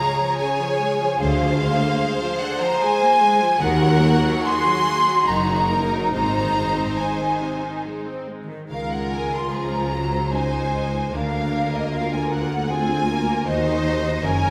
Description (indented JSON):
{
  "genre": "classical, slow romantic movement for symphony orchestra",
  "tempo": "68-79 BPM",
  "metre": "3/4",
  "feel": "rubato",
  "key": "Db major",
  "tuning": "A4 = 440 Hz",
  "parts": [
    { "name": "rich symphonic violin section", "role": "melody", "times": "0.0-14.5 s", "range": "Eb5 to C6", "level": "-32 LUFS", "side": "equal", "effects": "none" },
    { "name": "large flute ensemble", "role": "second line", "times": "0.0-14.5 s", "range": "Eb5 to C6", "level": "-25 LUFS", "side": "equal", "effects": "none" },
    { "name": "rich chamber violin section", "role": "second line", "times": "0.0-14.5 s", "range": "Gb4 to Db5", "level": "-30 LUFS", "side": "equal", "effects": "none" },
    { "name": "rich symphonic viola section", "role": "accompaniment", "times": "0.0-14.5 s", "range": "C3 to Bb4", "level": "-30 LUFS", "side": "equal", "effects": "none" },
    { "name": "concert harp", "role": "arpeggios", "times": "0.0-14.5 s", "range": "Gb2 to Bb4", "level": "-33 LUFS", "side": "equal", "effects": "none" },
    { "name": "mellow tuba", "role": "bass", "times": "1.2-14.5 s", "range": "Gb1 to Eb2", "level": "-30 LUFS", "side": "equal", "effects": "none" },
    { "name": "rich studio double bass section", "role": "bass", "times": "1.2-14.5 s", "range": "Gb1 to Eb2", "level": "-32 LUFS", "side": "equal", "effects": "none" },
    { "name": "warm symphonic cello section", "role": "bass", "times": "1.2-14.5 s", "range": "Db2 to Ab2", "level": "-31 LUFS", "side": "equal", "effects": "none" },
    { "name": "timpani", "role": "percussion", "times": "6.1-7.4 s", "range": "none", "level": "barely audible", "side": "none", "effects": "none" }
  ],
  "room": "wet scoring stage reverb, RT60 1.4 s",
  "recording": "none",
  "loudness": "-21 LUFS",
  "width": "mono",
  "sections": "0.0-14.5 A section",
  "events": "none",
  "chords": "0.0 Db; 1.2 Bb7/D; 3.6 Ebm; 5.3 Ebm/Gb; 6.1 Ab; 8.7 Db; 11.1 Bb7/D; 13.5 Ebm7"
}